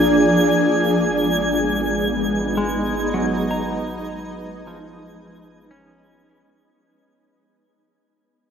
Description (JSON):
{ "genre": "ambient", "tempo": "78 BPM", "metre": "4/4", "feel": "straight", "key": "unclear", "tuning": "A4 = 438 Hz", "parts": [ { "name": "shimmering ambient pad", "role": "sustained chords", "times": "0.0-6.7 s", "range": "F3 to Eb5", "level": "-19 LUFS", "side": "equal", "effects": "chorus, built-in reverb" }, { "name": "warm sub bass", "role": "bass", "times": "0.0-6.6 s", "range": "Ab1 to Bb1", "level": "-37 LUFS", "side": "equal", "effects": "none" }, { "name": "twinkling granular texture", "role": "texture", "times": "0.0-6.7 s", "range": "Ab6", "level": "-26 LUFS", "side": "left 1 dB", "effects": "built-in reverb" }, { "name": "clean electric guitar", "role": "arpeggios", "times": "2.6-7.4 s", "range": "F3 to Bb5", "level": "-29 LUFS", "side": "equal", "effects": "tape echo" } ], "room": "wet huge ambient reverb, RT60 8.2 s", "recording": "in a vast, echoing space", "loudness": "-17 LUFS", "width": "side -7 dB against mid", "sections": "0.0-6.7 A section", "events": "fade-out on sub bass 0.0-6.7; fade-out 0.0-6.7", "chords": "0.0 Bb7; 0.6 Abm" }